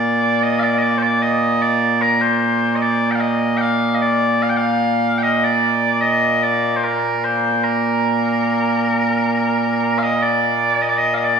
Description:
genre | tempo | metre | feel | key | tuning
scottish traditional, Scottish pipe music | 75 BPM | 3/4 | straight | Bb major | A4 = 442 Hz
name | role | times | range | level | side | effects
mellow small bagpipes | solo | 0.0-11.4 s | Bb2 to G5 | -15 LUFS | right 1 dB | none
room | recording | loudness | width
wet scoring stage reverb, RT60 1.9 s | recorded in a church or concert hall, small room ambience | -15 LUFS | side -6 dB against mid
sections
0.0-10.0 A section; 10.0-11.4 A section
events
none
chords
none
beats
| 0.43 1.23 2.03 | 2.83 3.63 4.43 | 5.23 6.03 6.83 | 7.63 8.43 9.23 | 10.03 10.83

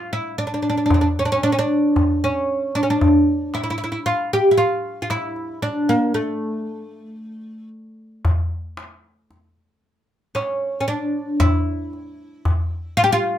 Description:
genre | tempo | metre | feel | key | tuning
Arabic maqam ensemble | 114 BPM (eighths) | 10/8 | straight | unclear | A4 = 440 Hz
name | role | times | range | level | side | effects
oud | melody | 0.0-13.4 s | A3 to G4 | -19 LUFS | equal | none
darbuka | percussion | 0.9-13.1 s | none | -21 LUFS | left 1 dB | none
room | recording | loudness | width
moderate studio reverb, RT60 0.5 s | minimal, uncompressed stereo recording | -18 LUFS | side -10 dB against mid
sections
0.0-8.2 A section; 8.2-13.4 B section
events
break 5.6-8.2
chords
none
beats
0.38 0.91 1.43 1.96 2.48 | 3.00 3.53 4.05 4.58 5.10 5.63 6.15 6.67 7.20 7.72 | 8.25 8.77 9.30 9.82 10.35 10.87 11.40 11.92 12.45 12.97

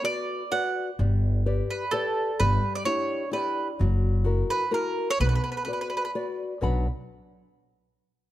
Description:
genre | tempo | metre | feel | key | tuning
italian folk, Italian serenade | 128 BPM | 3/4 | swing 55% on 8ths | B minor | A4 = 439 Hz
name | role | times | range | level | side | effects
mandolin | melody | 0.0-6.1 s | A4 to F#5 | -28 LUFS | right 3 dB | none
nylon-string guitar | accompaniment | 0.0-6.9 s | B2 to B5 | -31 LUFS | left 4 dB | none
upright bass | bass | 1.0-6.9 s | F#1 to B1 | -24 LUFS | equal | none
room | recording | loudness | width
little or no reverb | close, detailed microphones | -24 LUFS | side -14 dB against mid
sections
0.0-6.6 A section; 6.6-8.0 B section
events
none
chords
0.0 Bm; 1.0 G; 2.4 Em7/G; 3.8 F#7; 5.2 Bm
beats
0.05 0.52 | 0.99 1.46 1.93 | 2.40 2.87 3.33 | 3.80 4.26 4.73 | 5.20 5.67 6.15 | 6.62

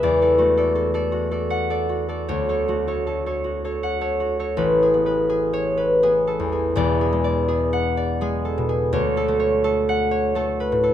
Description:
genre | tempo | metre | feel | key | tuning
classical, solo harp piece | 81 BPM | 3/4 | uneven beats, rubato | A major | A4 = 437 Hz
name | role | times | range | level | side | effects
concert harp | solo | 0.0-10.9 s | E1 to F#5 | -19 LUFS | equal | none
room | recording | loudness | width
little or no reverb | close, detailed microphones | -19 LUFS | side -10 dB against mid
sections
0.0-4.6 A section; 4.6-10.9 B section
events
none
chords
0.0 E11; 2.3 Dmaj7; 4.6 Amaj9; 6.8 E9; 8.9 Dmaj7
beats
| 0.03 0.75 1.50 | 2.28 3.07 3.83 | 4.57 5.30 6.03 | 6.76 7.49 8.22 | 8.94 9.65 10.36

